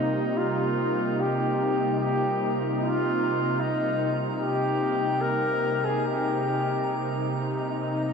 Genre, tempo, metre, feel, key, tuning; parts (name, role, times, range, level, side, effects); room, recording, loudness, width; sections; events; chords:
ambient; 74 BPM; 4/4; straight; A4 = 441 Hz
mellow flugelhorn; melody; 0.0-8.1 s; Eb4 to Bb4; -26 LUFS; left 1 dB; diffuse ambient delay
warm analog pad; sustained chords; 0.0-8.1 s; C3 to G4; -27 LUFS; equal; chorus
drifting glass-harmonics texture; texture; 0.0-8.1 s; Bb5; -42 LUFS; right 6 dB; chorus, built-in reverb
wet huge ambient reverb, RT60 7.5 s; -24 LUFS; side -6 dB against mid
0.0-8.1 A section
fade-in on synth texture 0.0-8.1
0.0 Cm7